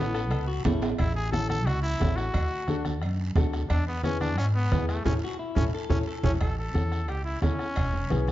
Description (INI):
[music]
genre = latin, cumbia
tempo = 177 BPM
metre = 4/4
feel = straight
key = A major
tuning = A4 = 441 Hz
[part]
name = growling trumpet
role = melody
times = 0.0-8.3 s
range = A3 to A4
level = -32 LUFS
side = left 1 dB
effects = none
[part]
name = dark upright piano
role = accompaniment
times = 0.0-8.3 s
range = B3 to A4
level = -34 LUFS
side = left 4 dB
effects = none
[part]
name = upright bass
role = bass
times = 0.0-8.3 s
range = E1 to G#2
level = -28 LUFS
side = equal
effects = none
[part]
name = clean electric guitar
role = second line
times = 0.1-0.9, 5.2-6.4 s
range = E4 to A4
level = -36 LUFS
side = left 6 dB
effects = none
[part]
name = bombo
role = percussion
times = 0.1-8.3 s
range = none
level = -30 LUFS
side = right 1 dB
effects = none
[part]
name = guiro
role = percussion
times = 0.2-8.3 s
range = none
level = -47 LUFS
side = right 4 dB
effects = none
[part]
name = cowbell and timbales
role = percussion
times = 0.3-7.9 s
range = none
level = -36 LUFS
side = right 5 dB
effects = none
[part]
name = congas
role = percussion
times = 0.7-8.3 s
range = none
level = -33 LUFS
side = right 1 dB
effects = none
[sound]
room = light reverb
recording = dark, warm production, nothing above 7.5 kHz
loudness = -24 LUFS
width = side -14 dB against mid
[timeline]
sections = 0.0-6.4 A section; 6.4-8.3 B section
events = drum fill 0.0-1.0, 5.1-6.4; band accent 5.1-6.4; trumpet solo 6.4-8.3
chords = 0.0 A; 2.3 D; 3.7 E; 5.1 A; 7.8 E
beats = 0.32 0.66 | 0.99 1.33 1.67 2.01 | 2.35 2.69 3.03 3.37 | 3.70 4.04 4.38 4.72 | 5.06 5.40 5.74 6.08 | 6.41 6.75 7.09 7.43 | 7.77 8.11